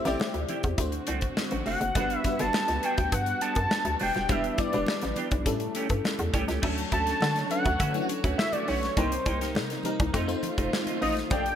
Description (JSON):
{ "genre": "polished 1980s jazz-funk pop", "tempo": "103 BPM", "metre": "4/4", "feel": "straight", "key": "D major", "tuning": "A4 = 442 Hz", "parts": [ { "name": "fat analog lead", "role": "melody", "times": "0.0-11.6 s", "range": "C5 to A5", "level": "-30 LUFS", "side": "equal", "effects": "chorus" }, { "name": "FM electric piano", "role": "accompaniment", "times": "0.0-11.6 s", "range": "F#3 to D5", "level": "-32 LUFS", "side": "left 3 dB", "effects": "ensemble chorus" }, { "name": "warm studio string section", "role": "sustained chords", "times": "0.0-11.6 s", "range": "C3 to C#5", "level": "-40 LUFS", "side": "right 2 dB", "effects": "none" }, { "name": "semi-hollow electric guitar", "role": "riff", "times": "0.1-11.5 s", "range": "A3 to G4", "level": "-35 LUFS", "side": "right 4 dB", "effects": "analog chorus" }, { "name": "hollow knocking FM bass", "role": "bass", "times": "0.1-11.5 s", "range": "Eb1 to D3", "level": "-31 LUFS", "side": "equal", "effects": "none" }, { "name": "modern studio drum kit", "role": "drums", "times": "0.1-11.6 s", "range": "crash cymbal, hi-hat, kick drum, snare drum", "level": "-30 LUFS", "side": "equal", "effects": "gated reverb" }, { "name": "congas", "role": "percussion", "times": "0.2-11.4 s", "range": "none", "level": "-44 LUFS", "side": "equal", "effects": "none" } ], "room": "moderate plate reverb, RT60 2.1 s", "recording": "bright 1980s-style digital production", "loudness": "-25 LUFS", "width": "side -9 dB against mid", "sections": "0.0-6.6 A section; 6.6-11.6 B section", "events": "none", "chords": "0.0 Am7; 0.8 D7; 2.0 Gmaj7; 4.3 Em7; 5.5 A7; 6.6 Dmaj7; 9.0 Cm7; 10.1 F7" }